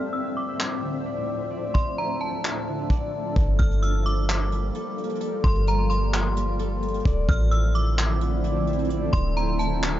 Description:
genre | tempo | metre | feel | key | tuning
hip hop, atmospheric cloud-rap | 130 BPM | 4/4 | half-time | G dorian | A4 = 440 Hz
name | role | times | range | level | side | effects
metallic FM bell | melody | 0.0-10.0 s | A5 to F6 | -32 LUFS | right 1 dB | chorus, low-pass filter, digital delay
shimmering ambient pad | sustained chords | 0.0-10.0 s | D2 to E5 | -29 LUFS | right 1 dB | chorus, built-in reverb, sidechain pumping, low-pass filter
concert harp | arpeggios | 0.0-10.0 s | D3 to D5 | -32 LUFS | left 5 dB | low-pass filter, digital delay
soft brush drum kit | drums | 0.6-9.9 s | handclaps, hi-hat, kick drum | -25 LUFS | equal | none
clean 808-style bass | bass | 3.4-10.0 s | D1 to A1 | -23 LUFS | equal | none
room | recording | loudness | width
studio reverb | dark, warm production, nothing above 7.5 kHz | -22 LUFS | side -13 dB against mid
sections
0.0-3.4 A section; 3.4-10.0 B section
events
none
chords
0.0 Dm9; 3.4 Gm11; 7.1 Dm9

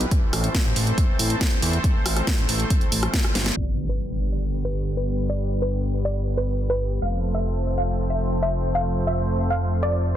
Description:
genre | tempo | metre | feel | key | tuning
uplifting trance | 139 BPM | 4/4 | straight | G mixolydian | A4 = 441 Hz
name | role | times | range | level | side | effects
supersaw pad | sustained chords | 0.0-10.2 s | D3 to C5 | -29 LUFS | equal | vintage 12-bit sampler grit, sidechain pumping, low-pass filter
fat analog bass | bass | 0.0-10.2 s | F1 to E2 | -24 LUFS | equal | sidechain pumping
techno drum kit | drums | 0.0-3.5 s | hi-hat, rim click, snare drum | -26 LUFS | right 1 dB | low-pass filter on hats, low-pass filter on snare, low-pass filter on room
electronic kick drum | drums | 0.1-3.2 s | none | -22 LUFS | equal | none
wide unison pluck | melody | 3.6-10.1 s | B4 to F5 | -28 LUFS | equal | sidechain pumping, tape echo
impact | sound effects | 3.6-5.3 s | none | -30 LUFS | equal | none
room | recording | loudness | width
little or no reverb | dense, heavily limited modern master, low-pass filter | -21 LUFS | side -11 dB against mid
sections
0.0-3.6 A section; 3.6-10.2 B section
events
drum fill 3.4; band accent 3.5; impact 3.6-5.3; filter sweep on supersaw synth 3.6-10.2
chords
0.1 Am; 3.6 G; 7.0 F

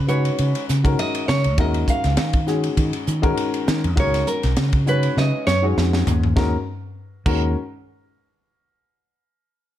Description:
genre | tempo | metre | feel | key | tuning
electric jazz fusion | 100 BPM | 4/4 | swing 54% on 16ths | Eb minor | A4 = 441 Hz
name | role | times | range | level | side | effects
nylon-string guitar | melody | 0.0-5.6 s | Bb4 to F5 | -24 LUFS | right 2 dB | slapback echo
fingered electric bass | bass | 0.0-7.5 s | Cb2 to Eb3 | -20 LUFS | equal | none
dark grand piano | accompaniment | 0.1-7.5 s | Eb3 to Db5 | -25 LUFS | left 4 dB | none
crisp fusion drum kit | drums | 0.1-7.4 s | crash cymbal, hi-hat, kick drum, ride cymbal, snare drum, toms | -23 LUFS | equal | none
room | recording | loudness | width
light reverb | dark, warm production | -18 LUFS | side -12 dB against mid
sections
0.0-6.4 A section; 6.4-8.8 B section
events
nylon-string guitar solo 0.0-6.4; drum fill 5.2-6.4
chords
0.0 Db7sus4; 1.6 Ebm9; 4.0 Dbsus4; 6.4 Ebm7

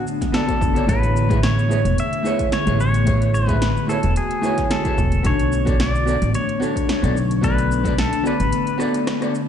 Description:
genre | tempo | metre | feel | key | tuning
sunset chillout | 110 BPM | 4/4 | swing 53% on 16ths | A major | A4 = 439 Hz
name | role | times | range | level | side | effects
pedal steel guitar | melody | 0.0-8.8 s | G#4 to E5 | -25 LUFS | left 2 dB | ping-pong delay
ethereal airy pad | sustained chords | 0.0-9.5 s | D3 to G#4 | -25 LUFS | left 2 dB | ensemble chorus, built-in reverb, vintage 12-bit sampler grit
deep house drum kit | drums | 0.1-9.5 s | cabasa, hi-hat, rim click, snare drum | -28 LUFS | right 1 dB | none
electronic kick drum | drums | 0.2-8.0 s | none | -23 LUFS | equal | none
vintage hollow-body jazz guitar | accompaniment | 0.3-9.3 s | A3 to E5 | -24 LUFS | moving between left 5 dB and right 4 dB | auto-pan, ping-pong delay
upright bass | bass | 0.6-8.5 s | E1 to B1 | -20 LUFS | equal | none
room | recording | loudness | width
light reverb, digital ambience | played on a big sound system in a bare room, large studio reverb, nothing above 10.7 kHz | -17 LUFS | side -8 dB against mid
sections
0.0-9.5 A section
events
break 8.5-9.5; drum fill 8.8-9.5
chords
0.0 Bm7; 0.9 Amaj9; 5.2 Bm9

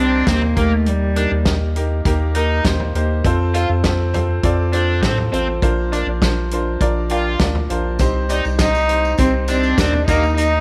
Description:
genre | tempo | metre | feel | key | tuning
piano-driven pop | 101 BPM | 4/4 | straight | Bb major | A4 = 440 Hz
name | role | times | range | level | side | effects
warm cello | melody | 0.0-1.5, 8.6-10.6 s | G3 to Eb4 | -21 LUFS | equal | none
clear concert grand piano | accompaniment | 0.0-10.6 s | Bb2 to C6 | -25 LUFS | equal | none
overdriven electric guitar | riff | 0.0-10.2 s | Bb3 to F4 | -26 LUFS | equal | none
round analog bass | bass | 0.0-10.6 s | A1 to A2 | -22 LUFS | equal | none
natural country drum kit | drums | 0.3-10.5 s | hi-hat, kick drum, snare drum, toms | -23 LUFS | equal | none
tambourine | percussion | 8.0-10.5 s | none | -39 LUFS | equal | none
room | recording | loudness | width
light reverb, studio ambience | none | -18 LUFS | mono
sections
0.0-10.6 A section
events
grand piano fill 6.2-8.0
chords
0.0 Cm; 0.6 Eb; 3.2 F; 5.6 Bbadd9; 8.0 Cm; 10.1 Eb

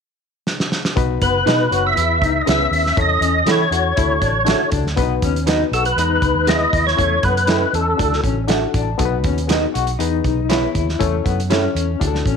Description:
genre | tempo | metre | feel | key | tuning
uptempo 1960s-style soul | 120 BPM | 4/4 | straight | B mixolydian | A4 = 440 Hz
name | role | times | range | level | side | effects
warm soul drum kit | drums | 0.5-12.4 s | hi-hat, kick drum, snare drum | -22 LUFS | right 2 dB | none
barky reed electric piano | accompaniment | 1.0-12.4 s | B2 to A5 | -24 LUFS | left 13 dB | overdrive
vintage muted fingered electric bass | bass | 1.0-12.4 s | F#1 to E3 | -22 LUFS | right 1 dB | none
percussive tonewheel organ | melody | 1.2-8.2 s | A4 to E5 | -18 LUFS | equal | overdrive, chorus vibrato, slow rotary speaker
electric guitar through a small old amp | riff | 1.2-12.4 s | A3 to F#4 | -24 LUFS | left 12 dB | tremolo
electric guitar at the edge of break-up | stabs | 1.5-11.6 s | D4 to E5 | -22 LUFS | right 13 dB | none
room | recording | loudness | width
light reverb, small room ambience | 1960s-style stereo with parts hard left and right | -15 LUFS | side -6 dB against mid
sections
1.0-5.0 A section; 5.0-12.4 B section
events
drum fill 0.5-1.0; reed electric piano fill 8.2-9.0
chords
0.0 N.C.; 1.0 B; 2.0 E; 3.0 A/E; 4.0 Dadd9; 5.0 B; 6.0 E; 7.0 A/E; 8.0 Dadd9; 9.0 B; 10.0 E; 11.0 A/E

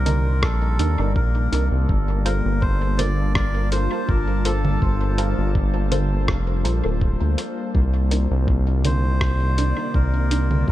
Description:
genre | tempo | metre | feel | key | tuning
ambient dub | 82 BPM | 4/4 | swing 54% on 16ths | G minor | A4 = 439 Hz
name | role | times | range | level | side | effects
melodica | melody | 0.0-10.7 s | A4 to D5 | -30 LUFS | equal | dub echo
warbly tape-like pad | sustained chords | 0.0-10.7 s | C3 to A5 | -28 LUFS | left 2 dB | chorus, built-in reverb
round analog bass | bass | 0.0-10.7 s | D1 to Eb2 | -20 LUFS | equal | none
filtered dub chord stab | stabs | 0.1-10.5 s | D4 to A5 | -31 LUFS | right 2 dB | phaser, wide subtle chorus, dub echo
lo-fi sampler-style drum kit | drums | 0.1-10.6 s | congas, hi-hat, rim click | -27 LUFS | right 1 dB | dub echo
electronic kick drum | drums | 0.4-10.7 s | none | -22 LUFS | equal | none
room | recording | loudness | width
digital ambience | none | -18 LUFS | side -14 dB against mid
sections
0.0-10.7 A section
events
none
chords
0.0 Cm9; 1.9 Gm11; 7.7 Cm9

